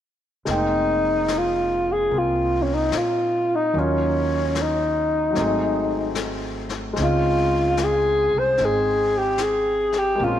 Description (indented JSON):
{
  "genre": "jazz ballad",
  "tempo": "74 BPM",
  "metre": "4/4",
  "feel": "swing 69% on 8ths",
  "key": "F minor",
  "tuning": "A4 = 440 Hz",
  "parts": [
    { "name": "breathy alto saxophone", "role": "melody", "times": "0.5-10.4 s", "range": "Db4 to C5", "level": "-20 LUFS", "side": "left 1 dB", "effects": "none" },
    { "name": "clear concert grand piano", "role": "accompaniment", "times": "0.5-10.4 s", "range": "Gb3 to G5", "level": "-27 LUFS", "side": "left 1 dB", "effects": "none" },
    { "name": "upright bass", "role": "bass", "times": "0.5-10.4 s", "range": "F1 to Bb2", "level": "-28 LUFS", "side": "right 2 dB", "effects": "none" },
    { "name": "vintage brush drum kit", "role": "drums", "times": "0.5-10.4 s", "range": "brushed snare drum, hi-hat, snare drum", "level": "-33 LUFS", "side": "left 7 dB", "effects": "none" }
  ],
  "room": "moderate echo chamber reverb, RT60 2.2 s",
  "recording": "1960s-style stereo",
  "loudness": "-19 LUFS",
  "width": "side -10 dB against mid",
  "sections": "0.5-10.4 A section",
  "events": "none",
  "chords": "0.5 Fm11; 3.7 Ebm7; 5.4 Ab7b9; 7.0 Dbmaj9"
}